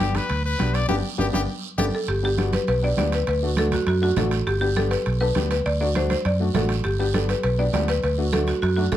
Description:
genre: latin, cumbia.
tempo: 202 BPM.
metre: 4/4.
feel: straight.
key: G major.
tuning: A4 = 439 Hz.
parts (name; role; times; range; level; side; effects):
brilliant trumpet; second line; 0.0-1.9 s; G4 to D5; -27 LUFS; left 5 dB; slapback echo.
clear upright piano; accompaniment; 0.0-9.0 s; A3 to A4; -29 LUFS; left 5 dB; none.
fingered electric bass; bass; 0.0-9.0 s; G1 to F#2; -24 LUFS; equal; none.
congas; percussion; 0.0-9.0 s; none; -29 LUFS; right 2 dB; none.
guiro; percussion; 0.0-9.0 s; none; -37 LUFS; right 9 dB; none.
timbales; percussion; 0.0-9.0 s; none; -33 LUFS; right 6 dB; none.
buzzing marimba with hard mallets; melody; 1.8-9.0 s; F#4 to D5; -24 LUFS; equal; none.
room: light reverb.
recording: none.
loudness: -20 LUFS.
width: side -12 dB against mid.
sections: 0.0-2.1 A section; 2.1-9.0 B section.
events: trumpet solo 0.0-2.1; band accent 0.9-2.1; drum fill 1.3-2.1.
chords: 0.0 G; 3.3 D; 4.5 G; 5.7 D; 6.8 G; 8.0 D.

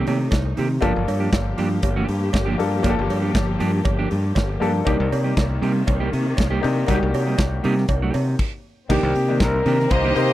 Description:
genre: disco.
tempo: 119 BPM.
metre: 4/4.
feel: straight.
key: unclear.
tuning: A4 = 441 Hz.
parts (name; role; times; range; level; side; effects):
mellow electric guitar; accompaniment; 0.0-10.3 s; Eb3 to G4; -25 LUFS; right 4 dB; none.
warm studio string section; sustained chords; 0.0-10.3 s; C3 to G4; -29 LUFS; left 2 dB; stereo widening.
modern bright fingered electric bass; bass; 0.1-10.3 s; G1 to C3; -22 LUFS; equal; none.
modern studio drum kit; drums; 0.1-10.3 s; crash cymbal, hi-hat, kick drum, snare drum; -22 LUFS; equal; none.
cowbell; percussion; 0.1-8.3 s; none; -33 LUFS; right 9 dB; none.
warm baby grand piano; accompaniment; 0.8-10.3 s; Bb3 to A4; -27 LUFS; left 6 dB; none.
breathy flugelhorn; melody; 8.9-10.3 s; G4 to C5; -22 LUFS; equal; none.
clear studio violin section; second line; 9.9-10.3 s; Bb3 to Eb5; -22 LUFS; equal; none.
room: small room ambience.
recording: dry, close 1970s-style studio recording.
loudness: -18 LUFS.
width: side -14 dB against mid.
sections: 0.0-8.9 A section; 8.9-10.3 B section.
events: stop 8.4-8.9.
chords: 0.0 Cm7; 0.8 Gm7; 4.9 Cm7; 8.9 Cm9.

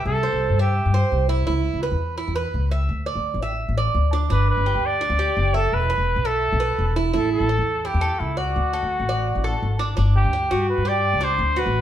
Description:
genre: latin, Cuban son and guajira.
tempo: 170 BPM.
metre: 4/4.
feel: straight.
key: G major.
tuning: A4 = 439 Hz.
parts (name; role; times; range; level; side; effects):
breathy trumpet; melody; 0.0-1.3, 4.3-11.8 s; E4 to D5; -23 LUFS; equal; none.
Cuban tres; arpeggios; 0.0-11.8 s; D4 to E5; -25 LUFS; right 4 dB; none.
upright bass; bass; 0.0-11.8 s; E1 to G2; -22 LUFS; left 1 dB; none.
room: wet studio reverb, RT60 0.9 s.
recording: heard from further back in the room.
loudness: -19 LUFS.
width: side -11 dB against mid.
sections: 0.0-10.0 A section; 10.0-11.8 B section.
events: none.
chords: 0.1 C; 1.5 C#m7; 2.9 Dsus2; 4.3 Gmaj7; 5.7 E5; 7.1 A7; 8.6 D; 10.0 G5.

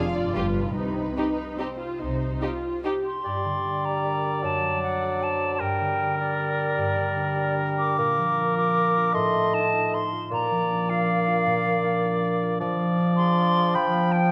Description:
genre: classical.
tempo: 138-170 BPM.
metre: 3/4.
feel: rubato.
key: C minor, G minor from 3.3 s.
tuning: A4 = 439 Hz.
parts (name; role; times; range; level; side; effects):
muted studio violin section; melody; 0.0-2.8 s; B4 to F5; -39 LUFS; equal; none.
muted symphonic violin section; second line; 0.0-2.9 s; Eb4 to G4; -34 LUFS; equal; none.
muted studio viola section; accompaniment; 0.0-3.2 s; C4 to G4; -32 LUFS; equal; none.
concert harp; arpeggios; 0.0-14.3 s; F2 to F5; -30 LUFS; equal; none.
muted studio cello section; bass; 0.4-2.3 s; G2 to C3; -36 LUFS; equal; none.
muted studio double bass section; bass; 0.4-2.3 s; G1 to C2; -34 LUFS; equal; none.
concert flute; second line; 3.1-14.3 s; D5 to D6; -28 LUFS; equal; none.
warm oboe; second line; 3.2-14.3 s; Bb4 to G5; -32 LUFS; equal; none.
warm bassoon; accompaniment; 3.3-14.3 s; F3 to Bb3; -30 LUFS; equal; none.
room: moderate concert hall reverb, RT60 1.9 s.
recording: none.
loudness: -24 LUFS.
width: mono.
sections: 0.0-3.3 A section; 3.3-14.3 B section.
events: none.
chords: 0.4 G7; 0.8 Cm; 3.3 Gm; 4.4 D7/F#; 5.6 Gm; 8.0 Bb; 9.1 F7/A; 10.3 Bb; 12.6 Ddim/F; 13.7 G7/F.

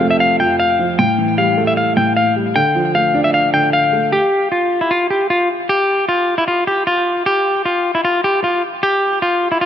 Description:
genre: hip hop.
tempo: 153 BPM.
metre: 4/4.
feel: half-time.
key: unclear.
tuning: A4 = 442 Hz.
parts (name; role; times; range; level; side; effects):
semi-hollow electric guitar; melody; 0.0-9.7 s; E4 to G5; -14 LUFS; left 1 dB; spring reverb, low-pass filter, digital delay.
dark grand piano; accompaniment; 0.0-4.1 s; F2 to D4; -17 LUFS; right 1 dB; low-pass filter.
room: light reverb.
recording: none.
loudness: -13 LUFS.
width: side -9 dB against mid.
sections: 0.0-4.1 A section; 4.1-9.7 B section.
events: none.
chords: 0.0 F; 1.0 A5; 2.6 Dm; 4.1 N.C..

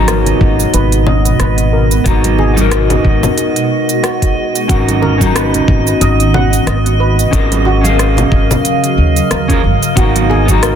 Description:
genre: sunset chillout.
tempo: 91 BPM.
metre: 4/4.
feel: swing 57% on 16ths.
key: G# dorian.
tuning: A4 = 440 Hz.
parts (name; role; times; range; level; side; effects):
electric guitar through a small old amp; accompaniment; 0.0-10.8 s; B3 to A#5; -16 LUFS; moving between left 4 dB and right 4 dB; auto-pan, digital delay.
shimmering ambient pad; sustained chords; 0.0-10.8 s; B2 to E#5; -19 LUFS; right 1 dB; chorus, built-in reverb, phaser.
steel pan; arpeggios; 0.0-10.8 s; F#4 to F#5; -21 LUFS; right 1 dB; low-pass filter, digital delay.
upright bass; bass; 0.0-10.8 s; G#1 to D#2; -14 LUFS; equal; none.
drifting glass-harmonics texture; texture; 0.0-10.8 s; D#5; -21 LUFS; right 2 dB; chorus, built-in reverb.
deep house drum kit; drums; 0.1-10.8 s; congas, hi-hat, rim click, shaker; -18 LUFS; left 1 dB; soft clipping on snare.
congas; percussion; 0.3-10.6 s; none; -23 LUFS; right 3 dB; none.
electronic kick drum; drums; 0.4-10.6 s; none; -14 LUFS; equal; overdrive.
room: light reverb.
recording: dense, heavily limited modern master.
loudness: -9 LUFS.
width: side -8 dB against mid.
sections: 0.0-10.8 A section.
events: none.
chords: 0.0 G#m9; 4.7 Bmaj7/G#; 7.3 F#maj7/G#; 10.0 G#m9.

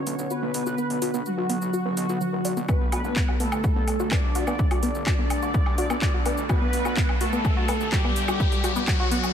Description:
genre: melodic techno.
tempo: 126 BPM.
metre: 4/4.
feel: straight.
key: unclear.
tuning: A4 = 437 Hz.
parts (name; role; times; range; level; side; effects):
expressive portamento lead; melody; 0.0-9.3 s; F#3 to D4; -30 LUFS; equal; ensemble chorus, sidechain pumping, tape echo.
soft supersaw; second line; 0.0-9.3 s; F#4 to D5; -31 LUFS; equal; ensemble chorus, sidechain pumping, low-pass filter, dub echo.
lush unison pad; sustained chords; 0.0-9.3 s; D3 to A4; -37 LUFS; equal; chorus, sidechain pumping.
tight sequenced synth; arpeggios; 0.0-9.2 s; F#3 to D5; -30 LUFS; left 2 dB; chorus, sidechain pumping, dub echo.
fat analog bass; bass; 0.0-9.3 s; F#1 to G2; -38 LUFS; equal; sidechain pumping, high-pass filter.
house drum kit; drums; 0.1-9.3 s; handclaps, hi-hat, shaker, woodblock; -32 LUFS; left 1 dB; overdrive, sidechain pumping on perc, sidechain pumping on hats.
electronic kick drum; drums; 2.7-9.0 s; none; -24 LUFS; equal; overdrive.
riser; sound effects; 5.2-9.3 s; none; -34 LUFS; left 4 dB; none.
room: light reverb.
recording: none.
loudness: -22 LUFS.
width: side -8 dB against mid.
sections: 0.0-9.3 A section.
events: build-up 0.0-9.3; filter sweep on synth arpeggio sound 0.0-9.3; filter sweep on analog synth lead 0.0-9.3; filter sweep on supersaw synth 0.0-9.3; filter sweep on analog synth pad 0.0-9.3; riser 5.2-9.3.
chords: 0.0 Bm; 2.7 Gadd9.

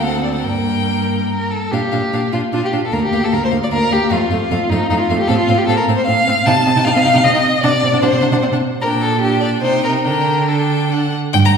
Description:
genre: quick classical-period movement for string quartet.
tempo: 136-156 BPM.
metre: 3/4.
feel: rubato.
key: Bb major.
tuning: A4 = 440 Hz.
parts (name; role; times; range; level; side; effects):
clear violin; melody; 0.0-11.5 s; D5 to Bb5; -24 LUFS; left 5 dB; none.
rich violin; second line; 0.0-10.9 s; Eb4 to A5; -17 LUFS; left 1 dB; none.
rich viola; accompaniment; 0.0-11.1 s; A3 to Eb4; -21 LUFS; equal; none.
clear cello; bass; 0.0-11.6 s; D2 to D3; -18 LUFS; right 3 dB; none.
room: wet recital hall reverb, RT60 1.4 s.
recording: recorded in a church or concert hall.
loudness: -13 LUFS.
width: side -6 dB against mid.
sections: 0.0-1.7 A section; 1.7-11.3 B section.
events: none.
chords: 0.0 D7; 0.4 Gm; 1.7 Bb; 2.9 Bb/D; 4.1 F; 5.3 F/A; 6.5 Adim/C; 7.6 D7(no3)/C; 8.8 Gm/Bb; 9.6 Cm; 10.1 Dsus4.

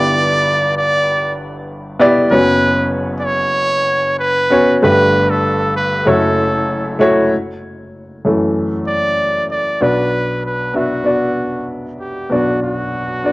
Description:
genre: pop.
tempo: 96 BPM.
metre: 4/4.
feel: straight.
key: B minor from 9.8 s.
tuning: A4 = 438 Hz.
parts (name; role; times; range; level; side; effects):
bright trumpet; melody; 0.0-13.3 s; F#4 to D5; -16 LUFS; right 1 dB; cassette tape.
warm upright piano; accompaniment; 0.0-13.3 s; F#1 to E5; -15 LUFS; equal; cassette tape.
room: moderate spring reverb, RT60 1.6 s, small room reverb.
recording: home recording on cassette.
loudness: -13 LUFS.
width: side -21 dB against mid.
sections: 0.0-7.3 A section; 7.3-9.8 B section; 9.8-13.3 C section.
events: upright piano solo 7.3-9.8.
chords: 0.0 Em7/G; 2.3 F#sus4; 4.8 Gadd9; 6.1 F#m7; 9.8 Bm.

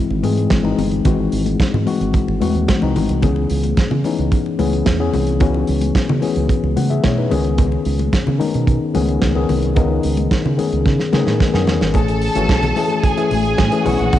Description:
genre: disco.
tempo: 110 BPM.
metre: 4/4.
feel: straight.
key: unclear.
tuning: A4 = 440 Hz.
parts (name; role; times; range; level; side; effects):
mellow tine electric piano; accompaniment; 0.0-14.2 s; D#3 to F#5; -19 LUFS; left 5 dB; cassette tape.
fingered electric bass; bass; 0.1-14.2 s; G1 to C#3; -20 LUFS; right 2 dB; none.
congas; percussion; 0.1-14.2 s; none; -25 LUFS; left 6 dB; none.
warm soul drum kit; drums; 0.2-14.2 s; hi-hat, kick drum, snare drum; -19 LUFS; right 2 dB; cassette tape.
clear studio string section; second line; 11.9-14.2 s; F#4 to A5; -21 LUFS; right 2 dB; cassette tape.
room: light reverb, small room reverb.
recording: home recording on cassette, nothing above 10.7 kHz.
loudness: -15 LUFS.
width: side -12 dB against mid.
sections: 0.0-11.9 A section; 11.9-14.2 B section.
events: drum fill 10.9-11.9.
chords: 0.0 G#7b13; 3.2 C#m7; 7.3 Amaj9#11 (rootless); 11.9 Amaj7.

